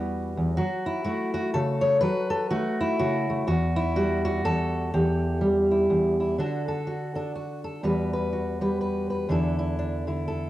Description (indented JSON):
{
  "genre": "folk, solo fingerstyle acoustic guitar",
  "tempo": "124 BPM",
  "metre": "3/4",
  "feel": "swing 60% on 8ths",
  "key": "E dorian",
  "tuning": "A4 = 440 Hz",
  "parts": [
    { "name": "fingerpicked steel-string acoustic guitar", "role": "solo", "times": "0.0-10.5 s", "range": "E2 to C#5", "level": "-23 LUFS", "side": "equal", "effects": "cassette tape" }
  ],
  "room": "wet spring reverb, RT60 1.4 s, studio reverb",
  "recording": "home recording on cassette",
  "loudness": "-23 LUFS",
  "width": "side -14 dB against mid",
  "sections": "0.0-6.4 A section; 6.4-10.5 B section",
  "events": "none",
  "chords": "0.0 Emadd9; 0.6 F#m; 3.5 Emadd9; 6.4 D; 7.8 Emadd9; 9.3 Asus4/E",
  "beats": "0.09 | 0.57 1.06 1.54 | 2.02 2.51 2.99 | 3.48 3.96 4.45 | 4.93 5.41 5.90 | 6.38 6.87 7.36 | 7.84 8.33 8.81 | 9.30 9.78 10.27"
}